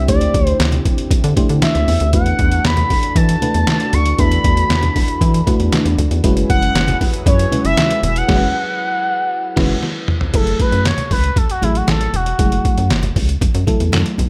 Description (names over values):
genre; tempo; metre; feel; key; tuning
early-eighties boogie funk; 117 BPM; 4/4; straight; F# minor; A4 = 441 Hz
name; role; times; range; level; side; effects
expressive portamento lead; melody; 0.0-12.9 s; E4 to C#6; -22 LUFS; equal; chorus, slapback echo
warm analog pad; sustained chords; 0.0-10.3 s; D3 to B4; -29 LUFS; equal; chorus
rubbery square bass; bass; 0.0-14.3 s; E1 to E3; -20 LUFS; equal; none
FM electric piano with soft pad layer; accompaniment; 0.1-14.2 s; F#3 to C5; -24 LUFS; equal; chorus, tremolo
trip hop sampler-style drum kit; drums; 0.1-14.3 s; crash cymbal, handclaps, hi-hat, kick drum, snare drum, toms; -20 LUFS; equal; overdrive
congas; percussion; 0.1-14.3 s; none; -28 LUFS; equal; none
room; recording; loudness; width
little or no reverb; none; -16 LUFS; mono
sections
0.0-10.3 A section; 10.3-14.3 B section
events
band accent 8.3-10.3; drum fill 9.8-10.3; analog synth lead solo 10.3-14.3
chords
0.0 D9sus4; 2.1 E9sus4; 6.2 F#9sus4; 10.3 F#m9